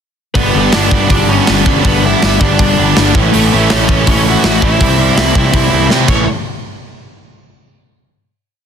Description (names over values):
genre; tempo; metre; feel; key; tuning
punk rock; 163 BPM; 4/4; straight; unclear; A4 = 440 Hz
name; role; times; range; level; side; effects
high-gain lead guitar; melody; 0.3-6.3 s; A3 to F#5; -17 LUFS; left 1 dB; distortion
distorted electric guitar; riff; 0.3-6.2 s; G2 to C4; -17 LUFS; left 14 dB; distortion
distorted electric guitar; riff; 0.4-6.2 s; G2 to E4; -15 LUFS; right 17 dB; overdrive
fuzz picked electric bass; bass; 0.4-6.3 s; G1 to C3; -15 LUFS; equal; overdrive
tight metal drum kit; drums; 0.4-6.2 s; crash cymbal, hi-hat, kick drum, snare drum; -14 LUFS; equal; soft clipping on kick
room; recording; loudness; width
little or no reverb; dense, heavily limited modern master; -9 LUFS; side -8 dB against mid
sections
0.4-6.3 verse; 6.3-7.7 final hit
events
drum fill 5.9-6.3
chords
0.4 G; 3.2 A; 4.8 C; 6.1 A; 6.3 N.C.